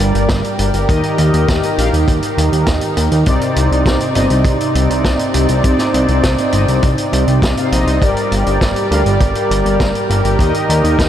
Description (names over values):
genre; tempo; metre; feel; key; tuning
synthwave; 101 BPM; 4/4; straight; C minor; A4 = 439 Hz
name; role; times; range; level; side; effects
soft supersaw; sustained chords; 0.0-11.1 s; C3 to D5; -17 LUFS; equal; lush chorus, sidechain pumping
fat analog bass; bass; 0.0-11.1 s; G1 to Eb2; -16 LUFS; equal; sidechain pumping
vintage drum kit; drums; 0.0-11.1 s; hi-hat, snare drum; -22 LUFS; equal; none
kick drum; drums; 0.3-11.1 s; none; -19 LUFS; equal; none
analog synth brass; stabs; 0.9-11.1 s; C3 to F5; -21 LUFS; left 2 dB; chorus, diffuse ambient delay
room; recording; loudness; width
moderate huge ambient reverb, RT60 8.4 s; dreamy mix soaked in reverb; -12 LUFS; side -10 dB against mid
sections
0.0-11.1 A section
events
none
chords
0.0 Gm; 0.9 Eb; 3.3 Cmadd9; 8.0 Gm; 10.4 Eb